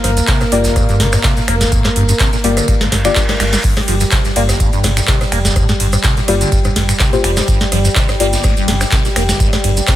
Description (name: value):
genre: acid house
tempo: 125 BPM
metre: 4/4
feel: swing 54% on 16ths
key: G minor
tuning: A4 = 440 Hz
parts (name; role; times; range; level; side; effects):
- warm analog pad; sustained chords; 0.0-10.0 s; G3 to Bb4; -22 LUFS; right 1 dB; chorus, sidechain pumping
- liquid acid bass; riff; 0.0-10.0 s; G1 to Bb3; -19 LUFS; equal; phaser, overdrive, wide subtle chorus, sidechain pumping, tape echo
- deep mellow chord stab; stabs; 0.0-8.3 s; Bb3 to D5; -20 LUFS; left 5 dB; chorus, tape echo
- round analog bass; bass; 0.0-9.8 s; F1 to G1; -17 LUFS; equal; sidechain pumping
- booming analog drum machine; drums; 0.0-10.0 s; crash cymbal, finger snaps, handclaps, hi-hat, ride cymbal, rim click, snare drum; -18 LUFS; equal; overdrive
- unplugged drum kit; drums; 0.0-10.0 s; ride cymbal, snare drum; -27 LUFS; left 2 dB; high-pass filter on cymbals, high-pass filter on snare, high-pass filter on room
- maracas; percussion; 0.2-10.0 s; none; -25 LUFS; right 2 dB; none
- electronic kick drum; drums; 0.3-10.0 s; none; -16 LUFS; equal; none
- reverse cymbal; sound effects; 2.9-3.6 s; none; -25 LUFS; right 1 dB; none
room: little or no reverb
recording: none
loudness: -11 LUFS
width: side -13 dB against mid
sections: 0.0-10.0 A section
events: reverse cymbal 2.9-3.6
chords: 0.0 Gm7